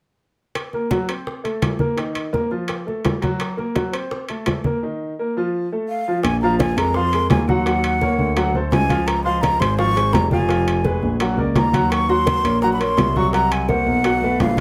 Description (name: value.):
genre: Afro-Cuban jazz.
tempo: 169 BPM.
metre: 4/4.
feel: straight.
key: Bb minor.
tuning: A4 = 440 Hz.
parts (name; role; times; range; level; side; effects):
bongos; percussion; 0.6-14.6 s; none; -33 LUFS; equal; none.
congas; percussion; 0.6-14.6 s; none; -27 LUFS; equal; none.
timbales; percussion; 0.6-14.6 s; none; -29 LUFS; equal; none.
bright upright piano; accompaniment; 0.7-14.6 s; Eb3 to Gb5; -25 LUFS; equal; none.
breathy jazz flute; melody; 5.9-14.6 s; F5 to Db6; -24 LUFS; equal; none.
dark grand piano; bass; 6.2-14.6 s; F1 to F2; -23 LUFS; equal; none.
room: moderate studio reverb, RT60 0.9 s.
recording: none.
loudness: -20 LUFS.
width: mono.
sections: 0.6-6.2 A section; 6.2-14.6 B section.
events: none.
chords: 0.6 Gb; 1.3 Am; 2.0 Ebsus2; 2.7 F; 3.4 Gb; 4.1 Am; 4.8 Ebsus2; 5.5 F; 6.2 Bbsus2; 7.7 Ebm7; 8.4 D7; 9.1 Dbmaj7; 10.5 Fdim; 11.2 Bbaug; 11.9 Ebm7; 13.3 Ab9; 14.0 B5.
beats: | 0.55 0.91 1.27 1.62 | 1.98 2.33 2.69 3.05 | 3.40 3.76 4.11 4.47 | 4.82 5.18 5.53 5.89 | 6.24 6.60 6.95 7.30 | 7.66 8.01 8.37 8.72 | 9.08 9.43 9.79 10.14 | 10.50 10.85 11.21 11.56 | 11.91 12.27 12.62 12.98 | 13.33 13.69 14.04 14.40.